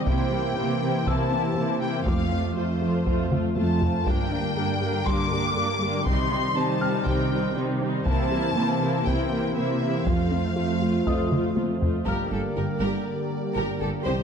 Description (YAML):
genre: cinematic, hybrid orchestral and electronic film score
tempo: 120 BPM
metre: 4/4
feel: straight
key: G minor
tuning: A4 = 439 Hz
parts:
  - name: warm symphonic violin section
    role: melody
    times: 0.0-14.2 s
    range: C5 to D6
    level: -31 LUFS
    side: left 4 dB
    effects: none
  - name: warm symphonic viola section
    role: accompaniment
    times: 0.0-14.2 s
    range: G3 to G4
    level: -31 LUFS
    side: equal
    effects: none
  - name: warm analog pad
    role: sustained chords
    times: 0.0-14.2 s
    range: D3 to C5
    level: -28 LUFS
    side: left 1 dB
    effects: chorus
  - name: felt-muted upright piano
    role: texture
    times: 0.0-14.1 s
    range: Eb5 to F6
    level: -37 LUFS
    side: left 2 dB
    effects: ping-pong delay
  - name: resonant blip pluck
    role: arpeggios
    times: 0.1-14.2 s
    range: C3 to G4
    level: -35 LUFS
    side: right 2 dB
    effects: none
  - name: dark symphonic cello section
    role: bass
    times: 0.1-14.2 s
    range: F2 to C3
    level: -28 LUFS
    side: right 3 dB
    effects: none
  - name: solo taiko drums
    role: drums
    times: 0.1-13.0 s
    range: none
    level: -28 LUFS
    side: left 1 dB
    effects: none
  - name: rich symphonic violin section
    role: second line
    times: 12.1-14.2 s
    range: A4 to C5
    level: -32 LUFS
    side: left 2 dB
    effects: none
  - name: clear trombone section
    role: sustained chords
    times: 12.1-14.2 s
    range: D3 to Bb3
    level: -35 LUFS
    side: right 6 dB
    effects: none
  - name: rich symphonic double bass section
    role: bass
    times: 12.1-14.1 s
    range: G1 to C2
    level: -32 LUFS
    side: right 2 dB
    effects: none
room: moderate scoring stage reverb, RT60 1.7 s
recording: dark, warm production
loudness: -22 LUFS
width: side -7 dB against mid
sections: 0.0-12.1 A section; 12.1-14.2 B section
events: drum fill 3.3-4.1, 11.3-12.1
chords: 0.1 C7; 2.1 F; 4.1 Gm; 6.1 Cm; 8.1 C7; 10.1 F; 12.1 Gm